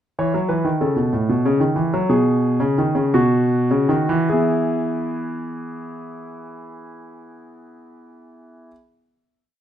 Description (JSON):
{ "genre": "classical, baroque-style two-part invention for grand piano", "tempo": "50-64 BPM (dotted quarters)", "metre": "6/8", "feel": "straight", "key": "E major", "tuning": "A4 = 440 Hz", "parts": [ { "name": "clear concert grand piano", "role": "solo", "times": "0.2-8.7 s", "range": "A2 to C#5", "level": "-18 LUFS", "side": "equal", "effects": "none" } ], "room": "light reverb", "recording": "minimal, uncompressed stereo recording", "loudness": "-17 LUFS", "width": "side -10 dB against mid", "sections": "0.2-4.3 exposition; 4.3-9.1 final chord", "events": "slowing down 0.2-5.5", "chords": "0.2 E5; 1.1 F#m/A; 2.1 B69; 3.1 B; 4.3 E", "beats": "| 0.19 1.13 | 2.09 3.13 | 4.29 5.50 | 6.71 7.91" }